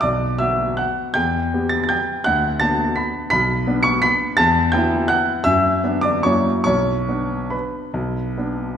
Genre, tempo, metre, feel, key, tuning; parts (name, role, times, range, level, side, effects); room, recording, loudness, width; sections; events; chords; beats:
classical, piano waltz; 133-178 BPM; 3/4; rubato; B minor; A4 = 444 Hz
warm grand piano; solo; 0.0-8.8 s; B1 to C#7; -17 LUFS; equal
wet scoring stage reverb, RT60 1.6 s; recorded in a church or concert hall; -17 LUFS; side -8 dB against mid
0.0-8.8 A section
0.0 Bm; 1.2 Em; 2.3 Bm/D; 3.3 Bm; 4.4 Em; 5.5 Bm/F#; 6.2 F#7; 6.7 Bm
| 0.03 0.41 0.79 | 1.16 1.54 1.91 | 2.27 2.62 2.98 | 3.33 3.68 4.04 | 4.39 4.74 5.10 | 5.46 5.83 6.24 | 6.66 7.08 7.53 | 7.95 8.37